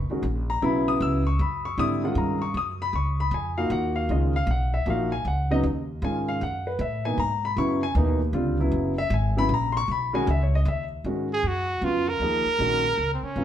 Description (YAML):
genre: modal jazz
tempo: 156 BPM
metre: 3/4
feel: swing 65% on 8ths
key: G# minor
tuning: A4 = 439 Hz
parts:
  - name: upright bass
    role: bass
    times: 0.0-13.4 s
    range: F#1 to A2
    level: -26 LUFS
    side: equal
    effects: none
  - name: warm grand piano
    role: accompaniment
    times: 0.1-13.4 s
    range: B2 to E6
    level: -25 LUFS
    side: left 1 dB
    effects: none
  - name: clear trumpet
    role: melody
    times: 11.3-13.4 s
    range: B#3 to A#4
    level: -24 LUFS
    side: right 3 dB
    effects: none
room: wet studio reverb, RT60 0.9 s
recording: heard from further back in the room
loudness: -22 LUFS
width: side -10 dB against mid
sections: 0.0-11.0 A section; 11.0-13.4 B section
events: none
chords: 0.0 F#7sus4; 1.8 G#13sus4; 6.4 F#13sus4; 11.0 G#13sus4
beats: 0.24 | 0.63 1.01 1.40 | 1.78 2.17 2.55 | 2.94 3.33 3.71 | 4.10 4.48 4.87 | 5.25 5.64 6.03 | 6.41 6.80 7.18 | 7.57 7.96 8.34 | 8.73 9.11 9.50 | 9.89 10.27 10.66 | 11.04 11.43 11.82 | 12.21 12.59 12.98 | 13.37